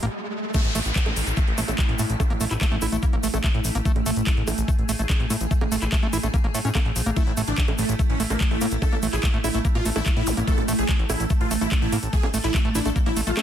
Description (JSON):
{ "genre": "psychedelic trance", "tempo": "145 BPM", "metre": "4/4", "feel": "straight", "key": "unclear", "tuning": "A4 = 440 Hz", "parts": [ { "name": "evolving wavetable pad", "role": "sustained chords", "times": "0.0-13.4 s", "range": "A3 to A4", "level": "-30 LUFS", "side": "right 2 dB", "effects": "ensemble chorus, built-in reverb, phaser, sidechain pumping" }, { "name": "overdriven acid bass", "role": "riff", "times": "0.0-13.4 s", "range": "A3 to E4", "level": "-30 LUFS", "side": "moving between left 5 dB and right 4 dB", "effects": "auto-pan, sidechain pumping, tape echo" }, { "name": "fat analog bass", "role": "bass", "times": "0.0-13.3 s", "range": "A1 to A2", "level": "-26 LUFS", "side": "equal", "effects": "none" }, { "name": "garage drum kit", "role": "drums", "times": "0.0-13.4 s", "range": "bongos, crash cymbal, handclaps, hi-hat", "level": "-30 LUFS", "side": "right 2 dB", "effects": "overdrive" }, { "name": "riser, downlifter and zap", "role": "sound effects", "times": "0.0-3.9, 10.3-10.4 s", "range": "none", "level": "-32 LUFS", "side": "equal", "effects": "none" }, { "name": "electronic kick drum", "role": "drums", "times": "0.5-13.0 s", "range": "none", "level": "-22 LUFS", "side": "equal", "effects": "overdrive" }, { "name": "egg shaker", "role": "percussion", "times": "0.5-13.4 s", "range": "none", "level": "-35 LUFS", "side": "left 6 dB", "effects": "none" }, { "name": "dense compressed supersaw", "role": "melody", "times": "7.2-13.4 s", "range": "A3 to A4", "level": "-29 LUFS", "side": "left 1 dB", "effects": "phaser, sidechain pumping, ping-pong delay" } ], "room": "little or no reverb", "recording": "dense, heavily limited modern master", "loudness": "-20 LUFS", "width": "side -10 dB against mid", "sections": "0.5-13.4 A section", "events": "riser 0.0-0.5; break 0.1-0.5; drop 0.5-13.4", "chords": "0.0 A5", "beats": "0.13 | 0.54 0.96 1.37 1.79 | 2.20 2.61 3.03 3.44 | 3.85 4.27 4.68 5.10 | 5.51 5.92 6.34 6.75 | 7.17 7.58 7.99 8.41 | 8.82 9.23 9.65 10.06 | 10.47 10.89 11.30 11.72 | 12.13 12.54 12.96 13.37" }